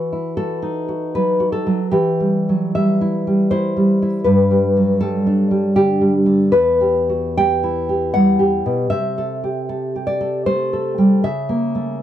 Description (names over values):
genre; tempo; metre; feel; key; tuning
romantic piece for solo classical guitar; 78 BPM; 3/4; rubato; unclear; A4 = 441 Hz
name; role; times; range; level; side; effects
nylon-string guitar; solo; 0.0-12.0 s; E2 to G5; -15 LUFS; equal; none
room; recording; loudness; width
little or no reverb; dark, warm production; -15 LUFS; side -11 dB against mid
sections
0.0-12.0 A section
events
none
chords
0.0 B/E; 1.9 Em; 4.3 G; 6.5 Em; 8.9 Am7/C; 11.2 C#m6